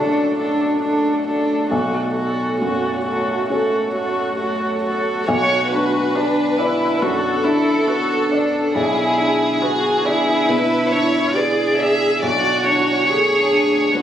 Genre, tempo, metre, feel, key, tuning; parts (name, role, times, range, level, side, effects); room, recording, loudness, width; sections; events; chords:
neoclassical piano and strings; 69 BPM; 4/4; rubato; B dorian; A4 = 442 Hz
warm chamber violin section; melody; 0.0-14.0 s; G#4 to E5; -21 LUFS; equal
dark viola; accompaniment; 0.0-14.0 s; D4 to G#4; -20 LUFS; equal
felt-muted upright piano; accompaniment; 0.0-14.0 s; B1 to D5; -22 LUFS; equal
deep dark ambient pad; sustained chords; 0.0-14.0 s; A3 to D5; -27 LUFS; left 1 dB; chorus, built-in reverb
moderate small room reverb, RT60 0.5 s; recorded on a phone in the room, club reverb, compression; -16 LUFS; side -10 dB against mid
0.0-5.3 A section; 5.3-14.0 B section
0.0 Bm7; 1.7 F#m/B; 5.3 Bm7; 8.7 E7/B; 12.2 Bm7